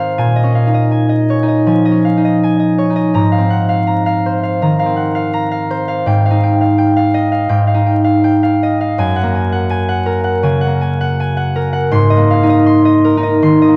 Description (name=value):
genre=classical, solo harp piece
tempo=82 BPM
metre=4/4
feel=rubato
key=Ab mixolydian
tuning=A4 = 441 Hz
part: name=concert harp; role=solo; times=0.0-13.8 s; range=Gb2 to C6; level=-14 LUFS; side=equal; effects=none
room=wet recital hall reverb, RT60 1.6 s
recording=dark, warm production, vinyl crackle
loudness=-14 LUFS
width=mono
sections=0.0-13.8 A section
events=none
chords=0.2 Bbm11; 3.1 Ab69; 6.1 Fm9/Ab; 9.0 Gbadd9; 11.9 Abadd9